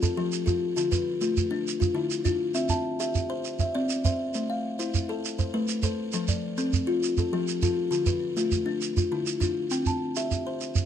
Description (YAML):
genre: southern african traditional, mbira-style interlocking cycle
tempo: 134 BPM (dotted quarters)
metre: 12/8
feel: straight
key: C major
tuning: A4 = 442 Hz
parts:
  - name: buzzing kalimba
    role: arpeggios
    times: 0.0-10.8 s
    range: D3 to A5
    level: -26 LUFS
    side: left 3 dB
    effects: none
  - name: shekere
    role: percussion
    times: 0.0-10.9 s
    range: none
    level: -27 LUFS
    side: right 4 dB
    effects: none
room: light reverb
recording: dark, warm production, lossy compression artefacts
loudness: -25 LUFS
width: side -9 dB against mid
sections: 0.0-9.7 A section; 9.7-10.9 B section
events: none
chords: 0.0 F; 0.8 Dm; 2.6 C; 4.3 Am; 6.1 F; 7.9 Dm; 9.7 C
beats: 0.32 | 0.77 1.22 1.66 2.11 | 2.56 3.00 3.45 3.90 | 4.34 4.79 5.24 5.68 | 6.13 6.58 7.03 7.47 | 7.92 8.37 8.82 9.27 | 9.71 10.16 10.61